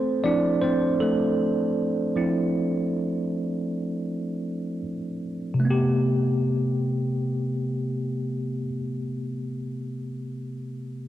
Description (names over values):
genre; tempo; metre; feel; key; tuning
hip hop; 78 BPM; 4/4; swing 61% on 16ths; A minor; A4 = 439 Hz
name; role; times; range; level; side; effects
bell-like tine electric piano; accompaniment; 0.0-11.1 s; C3 to D5; -24 LUFS; equal; medium stereo tremolo, low-pass filter
room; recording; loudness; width
moderate plate reverb, RT60 2.6 s; dreamy mix soaked in reverb; -24 LUFS; side -13 dB against mid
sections
0.0-5.6 A section; 5.6-8.7 B section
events
tine electric piano solo 0.0-5.6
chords
0.0 Dm9; 5.6 Am9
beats
0.23 1.00 1.77 | 2.54 3.31 4.08 4.84 | 5.61 6.38 7.15 7.92